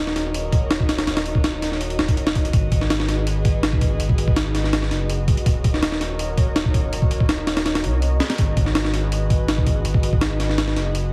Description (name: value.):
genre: drum and bass, jungle.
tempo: 164 BPM.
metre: 4/4.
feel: straight.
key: G# minor.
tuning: A4 = 435 Hz.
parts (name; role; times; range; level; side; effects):
airy breathy pad; sustained chords; 0.0-11.1 s; F#4 to D#5; -32 LUFS; equal; chorus.
saturated sub bass; bass; 0.0-11.1 s; D#1 to B#1; -26 LUFS; equal; tube saturation.
breakbeat sampler-style drum kit; drums; 0.1-11.0 s; hi-hat, kick drum, snare drum; -22 LUFS; equal; none.
room: light reverb, digital ambience.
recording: heavily compressed radio sound, multiband compression, vinyl crackle.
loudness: -21 LUFS.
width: mono.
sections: 0.0-11.1 A section.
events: kick drops out 7.7-8.4.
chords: 0.0 D#m7; 2.5 G#m7; 5.5 D#m7; 8.4 G#m7.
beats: 0.34 0.70 | 1.07 1.44 1.80 2.17 | 2.53 2.90 3.27 3.63 | 4.00 4.36 4.73 5.09 | 5.46 5.83 6.19 6.56 | 6.92 7.29 7.66 8.02 | 8.39 8.75 9.12 9.49 | 9.85 10.22 10.58 10.95.